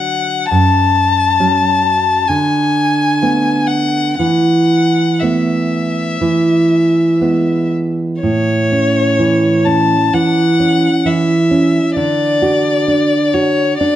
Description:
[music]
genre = romantic duo for violin and classical guitar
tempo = 57-68 BPM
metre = 4/4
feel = rubato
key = A major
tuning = A4 = 443 Hz
[part]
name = rich violin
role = melody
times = 0.0-14.0 s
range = C#5 to A5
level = -16 LUFS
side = left 5 dB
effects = none
[part]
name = nylon-string guitar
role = accompaniment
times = 0.0-14.0 s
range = F#2 to F#4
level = -13 LUFS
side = right 2 dB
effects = none
[sound]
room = moderate recital hall reverb, RT60 1.5 s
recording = none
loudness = -11 LUFS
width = side -12 dB against mid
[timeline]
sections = 0.0-8.2 A section; 8.2-14.0 B section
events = none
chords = 0.5 F#m; 2.3 Bm7/D; 4.2 Esus4; 6.2 E; 8.2 A; 12.0 D

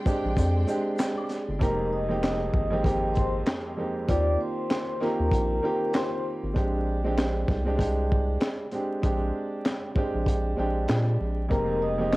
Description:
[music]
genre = hip hop, boom-bap hip-hop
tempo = 97 BPM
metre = 4/4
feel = swing 58% on 16ths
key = F dorian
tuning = A4 = 438 Hz
[part]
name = rich studio string section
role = sustained chords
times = 0.0-1.6 s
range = Ab3 to C6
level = -40 LUFS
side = left 1 dB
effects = cassette tape
[part]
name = warm upright piano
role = accompaniment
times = 0.1-12.2 s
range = F2 to G4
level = -28 LUFS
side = right 1 dB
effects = cassette tape
[part]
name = crunchy breakbeat drum kit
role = drums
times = 0.1-12.2 s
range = handclaps, hi-hat, kick drum, shaker, snare drum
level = -27 LUFS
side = equal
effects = cassette tape
[part]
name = tube shaker and woodblock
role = percussion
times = 0.1-1.5 s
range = none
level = -45 LUFS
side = left 1 dB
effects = none
[part]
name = round analog bass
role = bass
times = 0.2-12.2 s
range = F1 to Bb2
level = -28 LUFS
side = equal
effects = transformer saturation
[part]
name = vibraphone with soft mallets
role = melody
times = 1.6-6.2, 11.5-12.2 s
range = Bb4 to Eb6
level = -29 LUFS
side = left 1 dB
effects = cassette tape, analog delay
[sound]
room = small room ambience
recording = home recording on cassette, vinyl crackle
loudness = -24 LUFS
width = side -20 dB against mid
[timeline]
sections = 0.0-1.6 A section; 1.6-12.2 B section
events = none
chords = 0.0 Bb13 (rootless); 1.6 Fm11; 4.1 Eb69; 6.6 Bb13; 11.5 Fm11

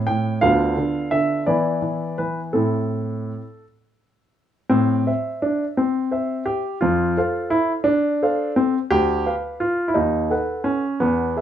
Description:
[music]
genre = classical-period piano sonatina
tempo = 57 BPM (dotted quarters)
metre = 6/8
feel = straight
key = A minor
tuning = A4 = 439 Hz
[part]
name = warm baby grand piano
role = solo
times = 0.0-11.4 s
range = D2 to G5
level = -19 LUFS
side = equal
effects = none
[sound]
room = light reverb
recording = minimal, uncompressed stereo recording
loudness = -19 LUFS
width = side -10 dB against mid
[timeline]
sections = 0.0-4.7 A section; 4.7-11.4 B section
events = none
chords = 0.4 Bdim/D; 1.5 E5; 2.5 Am; 6.8 F; 8.9 Bdim/D; 10.0 B7/D#

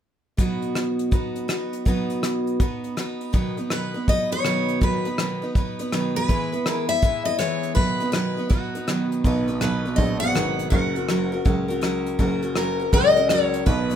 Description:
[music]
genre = honky-tonk and classic country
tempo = 163 BPM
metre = 4/4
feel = swing 64% on 8ths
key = B major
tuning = A4 = 439 Hz
[part]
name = picked steel-string acoustic guitar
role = accompaniment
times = 0.4-14.0 s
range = B2 to B4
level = -25 LUFS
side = right 1 dB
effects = none
[part]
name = soft brush drum kit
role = drums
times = 0.4-14.0 s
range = hi-hat, kick drum, rim click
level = -24 LUFS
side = equal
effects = none
[part]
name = picked steel-string acoustic guitar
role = melody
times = 3.7-14.0 s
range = F#4 to F#5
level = -24 LUFS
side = left 2 dB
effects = none
[part]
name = warm grand piano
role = bass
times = 9.2-14.0 s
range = F#1 to C#2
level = -27 LUFS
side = right 2 dB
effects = none
[sound]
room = moderate studio ambience, RT60 0.5 s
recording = minimal, uncompressed stereo recording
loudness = -20 LUFS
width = side -9 dB against mid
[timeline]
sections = 0.4-3.3 A section; 3.3-14.0 B section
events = none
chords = 0.4 B; 6.3 E; 7.8 B; 10.7 F#

